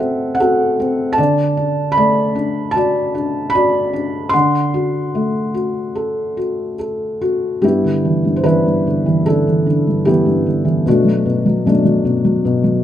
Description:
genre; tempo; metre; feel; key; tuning
classical, lyrical solo piano; 75 BPM; 4/4; rubato; unclear; A4 = 438 Hz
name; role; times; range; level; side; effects
felt-muted upright piano; solo; 0.0-12.8 s; G2 to C6; -14 LUFS; equal; none
room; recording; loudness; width
moderate scoring stage reverb, RT60 1.8 s; close, detailed microphones; -14 LUFS; side -11 dB against mid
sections
0.0-7.6 A section; 7.6-12.8 B section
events
none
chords
0.0 D9; 1.2 Bm7/D; 7.6 G6; 10.9 Bm7

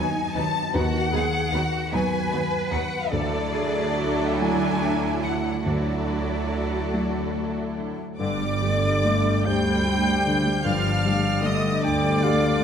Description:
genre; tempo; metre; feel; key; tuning
cinematic; 46-52 BPM (dotted quarters); 6/8; rubato; unclear; A4 = 444 Hz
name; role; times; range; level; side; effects
warm symphonic violin section; melody; 0.0-12.6 s; D5 to G6; -29 LUFS; left 3 dB; none
warm symphonic violin section; second line; 0.0-12.6 s; D#4 to G5; -32 LUFS; left 1 dB; none
felt-muted upright piano; accompaniment; 0.0-12.6 s; D2 to G4; -29 LUFS; left 1 dB; none
rich symphonic viola section; accompaniment; 0.0-12.6 s; D3 to D4; -31 LUFS; right 3 dB; none
concert harp; arpeggios; 0.0-12.6 s; G2 to F#4; -32 LUFS; left 8 dB; none
rich symphonic cello section; bass; 0.0-12.6 s; D2 to B4; -30 LUFS; right 4 dB; none
warm symphonic double bass section; bass; 0.0-12.6 s; G1 to D#2; -30 LUFS; right 4 dB; none
bright concert flute; second line; 8.2-12.6 s; D5 to G5; -30 LUFS; equal; none
clear clarinet; second line; 8.2-12.6 s; C5 to G5; -31 LUFS; equal; none
mellow French horn section; sustained chords; 8.2-12.6 s; D3 to G3; -27 LUFS; left 3 dB; none
room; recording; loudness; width
moderate scoring stage reverb, RT60 1.9 s; none; -21 LUFS; side -8 dB against mid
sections
0.0-8.2 A section; 8.2-12.6 A section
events
none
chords
0.0 B/D#; 3.1 Dadd9; 8.2 Gsus2

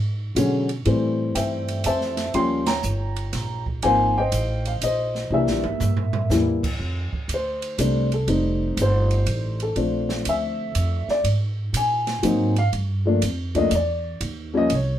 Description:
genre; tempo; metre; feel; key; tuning
jazz piano trio; 121 BPM; 3/4; swing 67% on 8ths; F major; A4 = 440 Hz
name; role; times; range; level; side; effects
upright bass; bass; 0.0-15.0 s; F1 to B2; -24 LUFS; right 1 dB; none
dark upright piano; melody; 0.4-15.0 s; D3 to C6; -22 LUFS; left 2 dB; none
open jazz drum kit; drums; 0.4-14.9 s; crash cymbal, hi-hat, kick drum, ride cymbal, snare drum, toms; -31 LUFS; right 3 dB; none
room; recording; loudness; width
moderate studio reverb, RT60 0.5 s; band playing live in one room; -20 LUFS; side -11 dB against mid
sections
0.0-6.8 A section; 6.8-15.0 B section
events
band accent 2.6; drum fill 5.3-6.3; upright piano solo 6.8-15.0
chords
0.0 E7 (rootless); 0.9 Am7; 2.3 Eb7; 3.8 Ab6; 5.3 C7 (rootless); 6.8 F6; 8.3 F7; 9.8 Bbmaj9; 11.2 Ab7sus2; 12.7 G7(no3); 14.2 Eb7(no3)

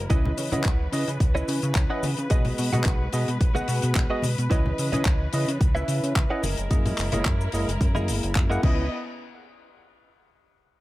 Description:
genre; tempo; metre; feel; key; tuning
nu-disco, nu disco; 109 BPM; 4/4; swing 54% on 16ths; C# dorian; A4 = 442 Hz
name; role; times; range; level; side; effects
dark studio string section; sustained chords; 0.0-8.9 s; E3 to D#5; -34 LUFS; left 1 dB; sidechain pumping
chorused synth bass; bass; 0.0-8.9 s; F#1 to C#3; -27 LUFS; equal; none
tine electric piano; accompaniment; 0.1-8.9 s; A#3 to F#5; -30 LUFS; equal; sidechain pumping, digital delay
direct-recorded clean electric guitar; riff; 0.1-8.9 s; E4 to F#5; -33 LUFS; right 2 dB; analog chorus, digital delay
damped 70s drum kit; drums; 0.1-8.8 s; cabasa, crash cymbal, handclaps, hi-hat; -32 LUFS; left 2 dB; none
electronic kick drum; drums; 0.1-8.8 s; none; -23 LUFS; equal; none
congas; percussion; 0.3-8.8 s; none; -32 LUFS; left 1 dB; none
room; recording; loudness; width
small room ambience; none; -22 LUFS; side -17 dB against mid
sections
0.0-8.9 A section; 8.9-10.8 B section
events
drop 0.0-8.9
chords
0.1 C#m9; 2.3 B6; 4.5 C#m9; 6.4 F#13; 8.6 C#m9; 8.9 N.C.

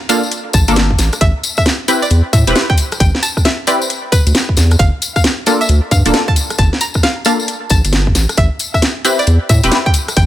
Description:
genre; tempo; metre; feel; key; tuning
UK garage, two-step garage; 134 BPM; 4/4; swing 64% on 16ths; unclear; A4 = 440 Hz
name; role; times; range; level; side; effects
string-like resonator pluck; melody; 0.0-10.3 s; B4 to Bb5; -20 LUFS; equal; chorus, dub echo
punchy chord stab; stabs; 0.1-9.8 s; Bb3 to B4; -17 LUFS; left 1 dB; chorus, phaser, dub echo
garage drum kit; drums; 0.1-10.3 s; hi-hat, rim click, snare drum; -18 LUFS; equal; studio reverb
tambourine; percussion; 0.1-10.3 s; none; -22 LUFS; left 3 dB; none
saturated sub bass; bass; 0.5-10.3 s; D1 to A2; -13 LUFS; equal; sidechain pumping
electronic kick drum; drums; 0.5-10.3 s; none; -13 LUFS; equal; studio reverb
room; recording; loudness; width
little or no reverb; none; -11 LUFS; side -13 dB against mid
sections
0.0-10.3 A section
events
none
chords
0.0 Gm9; 1.0 Am9; 4.8 Gm9; 8.2 Am9

